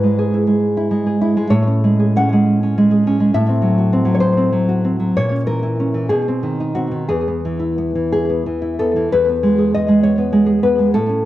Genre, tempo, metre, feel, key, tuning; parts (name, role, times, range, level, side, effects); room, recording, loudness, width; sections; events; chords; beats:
romantic piece for solo classical guitar; 58-69 BPM (dotted quarters); 6/8; rubato; E major; A4 = 440 Hz
nylon-string guitar; solo; 0.0-11.3 s; E2 to F#5; -14 LUFS; equal; slapback echo
light reverb; worn, warbling old tape, cassette tape, warbly pitch drift; -14 LUFS; side -14 dB against mid
0.0-9.1 A section; 9.1-11.3 A section
0.0 E/G#; 1.5 Amaj7; 3.3 F#m7b5/A; 5.1 A#dim; 6.1 B; 7.1 E
0.62 | 1.53 2.47 | 3.34 4.22 | 5.14 6.10 | 7.09 8.11 | 9.11 10.03 | 10.96